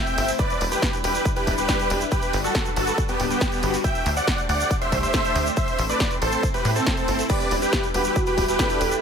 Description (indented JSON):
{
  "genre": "uplifting trance",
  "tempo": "139 BPM",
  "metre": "4/4",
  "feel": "straight",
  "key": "E minor",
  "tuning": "A4 = 441 Hz",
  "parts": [
    { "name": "dense compressed supersaw", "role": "melody", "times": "0.0-8.9 s", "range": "B3 to G5", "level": "-24 LUFS", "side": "right 1 dB", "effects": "sidechain pumping, digital delay" },
    { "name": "lush unison pad", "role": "sustained chords", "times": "0.0-9.0 s", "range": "G3 to C5", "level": "-29 LUFS", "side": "left 1 dB", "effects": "chorus, phaser, sidechain pumping" },
    { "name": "big-room dance drum kit", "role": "drums", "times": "0.1-9.0 s", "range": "crash cymbal, hi-hat, snare drum", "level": "-29 LUFS", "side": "equal", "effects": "none" },
    { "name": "egg shaker", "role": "percussion", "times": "0.1-9.0 s", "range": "none", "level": "-36 LUFS", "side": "right 4 dB", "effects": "none" },
    { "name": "tight sequencer bass", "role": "bass", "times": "0.2-9.0 s", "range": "D1 to A2", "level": "-27 LUFS", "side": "equal", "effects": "sidechain pumping" },
    { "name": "electronic kick drum", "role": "drums", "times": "0.4-8.7 s", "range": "none", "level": "-25 LUFS", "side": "equal", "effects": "none" },
    { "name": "warm velvety synth lead", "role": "second line", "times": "7.3-9.0 s", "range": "F#4 to A4", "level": "-27 LUFS", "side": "right 1 dB", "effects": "chorus, tape echo" }
  ],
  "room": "light reverb",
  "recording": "none",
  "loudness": "-20 LUFS",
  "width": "side -7 dB against mid",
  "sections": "0.0-9.0 A section",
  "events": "none",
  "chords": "0.4 Em7; 2.1 Gmaj7; 3.8 D7sus4; 5.6 Am; 7.3 Em7"
}